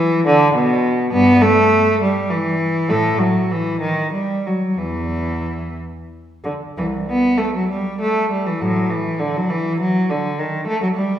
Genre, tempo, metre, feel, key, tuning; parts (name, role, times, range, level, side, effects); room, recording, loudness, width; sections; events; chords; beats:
classical, baroque-style suite movement for unaccompanied cello; 58-71 BPM (dotted quarters); 6/8; rubato; E minor; A4 = 440 Hz
rich cello; solo; 0.0-11.2 s; C2 to B3; -16 LUFS; equal
wet recital hall reverb, RT60 1.6 s; recorded in a church or concert hall; -16 LUFS; side -10 dB against mid
0.0-6.8 A section; 6.8-11.2 A section
0.26 | 1.13 2.01 | 2.90 3.82 | 4.80 5.79 | 6.78 7.69 | 8.60 9.49 | 10.37